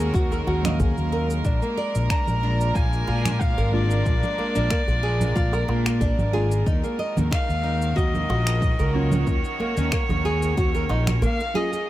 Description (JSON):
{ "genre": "organic downtempo", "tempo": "92 BPM", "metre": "4/4", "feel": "swing 54% on 16ths", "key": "Eb minor", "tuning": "A4 = 440 Hz", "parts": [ { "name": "warm studio string section", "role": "sustained chords", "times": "0.0-11.9 s", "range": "Eb3 to Bb4", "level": "-32 LUFS", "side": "equal", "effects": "sidechain pumping" }, { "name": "nylon-string guitar", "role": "arpeggios", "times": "0.0-11.9 s", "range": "Bb3 to Eb5", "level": "-28 LUFS", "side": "right 1 dB", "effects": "digital delay" }, { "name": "fretless electric bass", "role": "bass", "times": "0.0-11.2 s", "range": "Ab1 to Bb2", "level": "-23 LUFS", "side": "equal", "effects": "lush chorus, sidechain pumping" }, { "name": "electronic shaker, finger snaps and congas", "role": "drums", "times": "0.0-11.9 s", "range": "none", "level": "-29 LUFS", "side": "right 2 dB", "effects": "overdrive, low-pass filter on perc, low-pass filter on snare" }, { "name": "electronic kick drum", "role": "drums", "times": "0.1-10.7 s", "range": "none", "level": "-24 LUFS", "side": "equal", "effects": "none" }, { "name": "djembe", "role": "percussion", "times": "0.1-11.5 s", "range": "none", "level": "-30 LUFS", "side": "equal", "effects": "none" }, { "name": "muted felt-like synth keys", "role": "accompaniment", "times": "0.6-11.7 s", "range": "Gb3 to F5", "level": "-32 LUFS", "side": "right 1 dB", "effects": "chorus, sidechain pumping, digital delay" }, { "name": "clear kamancheh", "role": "melody", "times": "2.1-11.9 s", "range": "Db5 to Bb5", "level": "-29 LUFS", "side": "equal", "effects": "digital delay" } ], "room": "small room ambience", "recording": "none", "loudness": "-20 LUFS", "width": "side -15 dB against mid", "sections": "0.0-11.9 A section", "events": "none", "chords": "0.0 Ebm7; 1.4 Bb7; 6.7 Ebm7" }